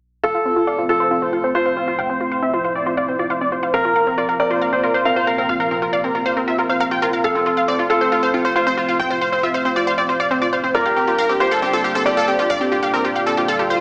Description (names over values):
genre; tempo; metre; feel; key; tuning
trance; 137 BPM; 4/4; straight; F major; A4 = 436 Hz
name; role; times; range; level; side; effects
supersaw stab; melody; 0.2-13.8 s; F4 to G5; -22 LUFS; equal; low-pass filter
warm grand piano; second line; 0.2-13.8 s; A4 to F5; -24 LUFS; equal; dub echo
lush unison pad; sustained chords; 0.2-13.8 s; A2 to G4; -29 LUFS; equal; chorus
unison pluck; arpeggios; 0.2-13.8 s; C4 to F5; -26 LUFS; equal; dub echo
tight sequencer bass; bass; 0.2-13.8 s; F1 to Bb1; -44 LUFS; equal; none
swell; sound effects; 13.5-13.8 s; none; -26 LUFS; equal; none
room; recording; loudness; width
moderate lush hall reverb, RT60 2.4 s; small speaker sound, faint mains hum; -19 LUFS; mono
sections
0.2-13.8 A section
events
filter sweep on supersaw synth 0.2-13.8; filter sweep on synth pluck 0.2-13.8; swell 13.5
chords
0.2 F; 3.7 Bbsus2; 7.2 F; 10.7 Gm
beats
| 0.23 0.67 1.11 1.55 | 1.99 2.42 2.86 3.30 | 3.74 4.18 4.62 5.05 | 5.49 5.93 6.37 6.80 | 7.24 7.68 8.12 8.56 | 8.99 9.43 9.87 10.31 | 10.75 11.18 11.62 12.06 | 12.50 12.94 13.37